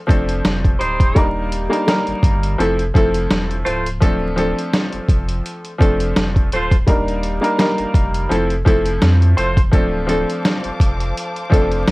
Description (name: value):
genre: hip hop, boom-bap hip-hop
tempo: 84 BPM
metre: 4/4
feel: swing 55% on 16ths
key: D minor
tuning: A4 = 439 Hz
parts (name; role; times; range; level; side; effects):
- clear upright piano; accompaniment; 0.1-11.9 s; F3 to Bb4; -19 LUFS; equal; cassette tape, high-pass filter, low-pass filter
- warm sub bass; bass; 0.1-11.9 s; C#1 to F2; -20 LUFS; equal; none
- boom bap sampler-style drum kit; drums; 0.1-11.9 s; hi-hat, kick drum, snare drum; -16 LUFS; equal; none
- clear saxophone section; stabs; 0.8-9.6 s; G3 to C5; -20 LUFS; right 1 dB; high-pass filter, low-pass filter, slapback echo
- dark studio string section; sustained chords; 9.7-11.9 s; C5 to D6; -28 LUFS; left 1 dB; high-pass filter, low-pass filter
room: light reverb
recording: worn, warbling old tape, cassette tape, vinyl crackle, warbly pitch drift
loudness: -14 LUFS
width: side -22 dB against mid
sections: 0.0-11.9 A section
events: none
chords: 0.0 Dm7; 1.2 Ebmaj7; 2.6 Fmaj7; 4.0 Dm7; 6.9 Ebmaj7; 8.3 Fmaj7; 9.7 Dm7